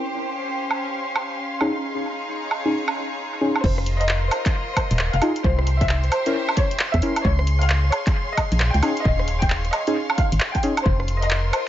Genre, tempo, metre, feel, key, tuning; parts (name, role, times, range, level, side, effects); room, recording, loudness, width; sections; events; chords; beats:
UK garage, two-step garage; 133 BPM; 4/4; swing 64% on 16ths; F minor; A4 = 442 Hz
soft string machine; sustained chords; 0.0-11.7 s; C6; -32 LUFS; equal; ensemble chorus, sidechain pumping
clear studio string section; texture; 0.0-11.7 s; Db4 to F5; -31 LUFS; left 1 dB; sidechain pumping
house drum kit; drums; 0.7-11.6 s; crash cymbal, handclaps, hi-hat, rim click, woodblock; -26 LUFS; right 2 dB; studio reverb, analog delay
deep mellow chord stab; stabs; 1.6-10.7 s; Db4 to Bb4; -26 LUFS; left 1 dB; chorus, analog delay
rich symphonic violin section; melody; 3.6-11.7 s; C5 to G5; -27 LUFS; left 1 dB; analog delay
organ-like FM bass; bass; 3.6-11.5 s; Eb1 to E2; -20 LUFS; equal
electronic kick drum; drums; 3.6-11.0 s; -22 LUFS; equal; studio reverb
light reverb, digital ambience; echo-heavy mix, nothing above 7.6 kHz; -19 LUFS; side -12 dB against mid
0.0-3.6 A section; 3.6-11.7 B section
drop 3.6-11.7
0.0 Db; 1.6 Eb7sus4; 3.6 Fm7; 5.4 C7b9; 7.2 Db; 8.8 Eb7sus4; 10.9 Fm7
| 0.03 0.48 0.93 1.38 | 1.83 2.29 2.74 3.19 | 3.64 4.09 4.54 4.99 | 5.44 5.89 6.35 6.80 | 7.25 7.70 8.15 8.60 | 9.05 9.50 9.96 10.41 | 10.86 11.31